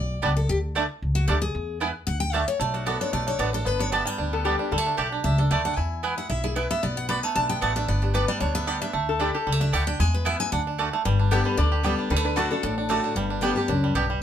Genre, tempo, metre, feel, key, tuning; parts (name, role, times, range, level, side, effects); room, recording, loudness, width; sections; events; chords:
bluegrass; 227 BPM; 4/4; swing 53% on 8ths; A4 = 443 Hz
picked steel-string acoustic guitar; accompaniment; 0.0-14.2 s; F#2 to B5; -27 LUFS; left 4 dB
upright bass; bass; 0.0-14.2 s; G1 to E2; -26 LUFS; equal
bluegrass banjo; arpeggios; 0.2-14.2 s; G3 to G4; -28 LUFS; right 5 dB
mandolin; stabs; 0.2-14.1 s; A3 to A5; -28 LUFS; right 4 dB
lap resonator guitar; second line; 4.3-5.2, 9.1-13.3 s; F#4 to D5; -29 LUFS; left 6 dB
moderate studio reverb, RT60 0.5 s; minimal, uncompressed stereo recording; -22 LUFS; side -9 dB against mid
0.0-2.6 A section; 2.6-11.1 A section; 11.1-14.2 A section
steel-string acoustic guitar solo 0.0-11.1; resonator guitar played with a steel bar solo 11.1-14.2
0.5 Dsus2; 1.5 E; 2.1 D; 2.6 Bm7; 3.7 Gadd9; 4.7 Dsus2; 5.8 E; 6.8 Bm7; 7.9 Gadd9; 8.9 Dsus2; 10.0 E; 10.5 D; 11.1 G; 12.1 D; 13.2 G